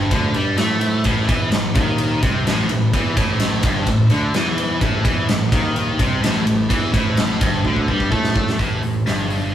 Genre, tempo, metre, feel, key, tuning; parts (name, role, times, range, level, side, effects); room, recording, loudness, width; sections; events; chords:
hard rock; 127 BPM; 4/4; straight; A minor; A4 = 438 Hz
high-gain distorted guitar; riff; 0.0-9.5 s; G2 to A3; -20 LUFS; equal; distortion
modern bright picked electric bass; bass; 0.0-9.5 s; G1 to A2; -23 LUFS; equal
big rock drum kit; drums; 0.1-9.4 s; crash cymbal, hi-hat, kick drum, ride cymbal, snare drum; -20 LUFS; equal
moderate small room reverb, RT60 0.5 s; rough rehearsal-room recording, warm saturation; -16 LUFS; side -10 dB against mid
0.0-8.6 A section
drum fill 7.7-8.6
0.0 A5; 8.6 N.C.